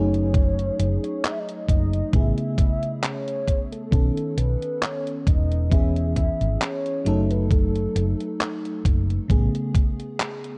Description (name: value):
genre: vaporwave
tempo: 67 BPM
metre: 4/4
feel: swing 54% on 16ths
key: F# dorian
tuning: A4 = 438 Hz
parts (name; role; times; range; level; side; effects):
- warm velvety synth lead; melody; 0.0-8.8 s; A4 to E5; -33 LUFS; equal; chorus, tremolo, tape echo
- FM electric piano with soft pad layer; accompaniment; 0.0-10.6 s; C#3 to A4; -30 LUFS; equal; tremolo, subtle chorus, tape echo
- hollow-body short-scale fingered electric bass; bass; 0.0-9.5 s; E1 to B1; -26 LUFS; equal; none
- detuned 8-bit digital drum machine; drums; 0.1-10.6 s; handclaps, hi-hat; -32 LUFS; equal; vintage 12-bit sampler grit
- electronic kick drum; drums; 0.3-9.9 s; none; -23 LUFS; equal; vintage 12-bit sampler grit
room: digital ambience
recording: dark, warm production, cassette tape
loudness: -23 LUFS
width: mono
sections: 0.0-10.6 A section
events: none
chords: 0.0 F#m69; 2.1 Amaj9; 3.9 B9; 5.7 E6; 7.1 F#m6; 9.3 Amaj9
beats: | 0.35 1.24 2.14 3.03 | 3.93 4.82 5.72 6.62 | 7.51 8.41 9.30 10.20